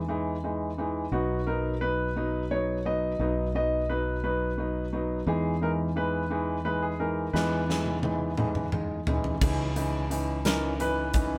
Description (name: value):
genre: six-eight pop ballad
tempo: 58 BPM (dotted quarters)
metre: 6/8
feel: straight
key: unclear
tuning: A4 = 440 Hz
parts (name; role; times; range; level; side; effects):
- fingered electric bass; bass; 0.0-11.4 s; B1 to E2; -34 LUFS; equal; none
- felt-muted upright piano; accompaniment; 0.1-11.4 s; E3 to D#4; -32 LUFS; equal; none
- clear concert grand piano; melody; 1.1-11.4 s; F#4 to D#5; -35 LUFS; equal; none
- huge arena drum kit; drums; 7.4-11.3 s; crash cymbal, hi-hat, kick drum, snare drum, toms; -32 LUFS; equal; none
room: moderate small room reverb, RT60 0.5 s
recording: band playing live in one room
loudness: -29 LUFS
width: mono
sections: 0.0-9.4 A section; 9.4-11.4 B section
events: drum fill 7.3-9.4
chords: 0.0 Emaj7; 1.1 B; 5.3 Emaj7; 9.4 C#madd9